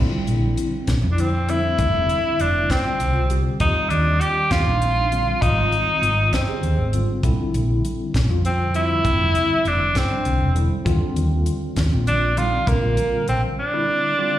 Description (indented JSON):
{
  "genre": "electric jazz fusion",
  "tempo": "66 BPM (dotted quarters)",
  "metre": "6/8",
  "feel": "straight",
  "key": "Bb lydian",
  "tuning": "A4 = 441 Hz",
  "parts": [
    { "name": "tine electric piano", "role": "accompaniment", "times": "0.0-14.4 s", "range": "D3 to Ab4", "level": "-26 LUFS", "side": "equal", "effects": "medium stereo tremolo, phaser, slapback echo" },
    { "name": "hollow-body short-scale fingered electric bass", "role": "bass", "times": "0.0-13.4 s", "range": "E1 to F2", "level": "-21 LUFS", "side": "equal", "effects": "none" },
    { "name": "tight funk drum kit", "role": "drums", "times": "0.3-13.4 s", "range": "hi-hat, kick drum, snare drum", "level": "-25 LUFS", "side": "equal", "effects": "none" },
    { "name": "clear tenor saxophone", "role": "melody", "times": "1.1-14.4 s", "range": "Bb3 to G4", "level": "-20 LUFS", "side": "equal", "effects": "slapback echo" }
  ],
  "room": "light reverb",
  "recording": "live gig heard through the venue's PA, recital hall reverb",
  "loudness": "-18 LUFS",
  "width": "side -12 dB against mid",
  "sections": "0.0-14.4 A section",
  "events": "none",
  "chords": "0.0 Bbadd9; 1.8 Fsus2; 3.6 Ebmaj9; 5.4 Abmaj7; 7.2 Bbadd9; 9.0 Fsus2; 10.9 Ebmaj9; 12.7 Bbadd9",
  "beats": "0.88 | 1.79 2.70 | 3.60 4.51 | 5.42 6.33 | 7.24 8.14 | 9.05 9.96 | 10.86 11.77 | 12.68 13.58"
}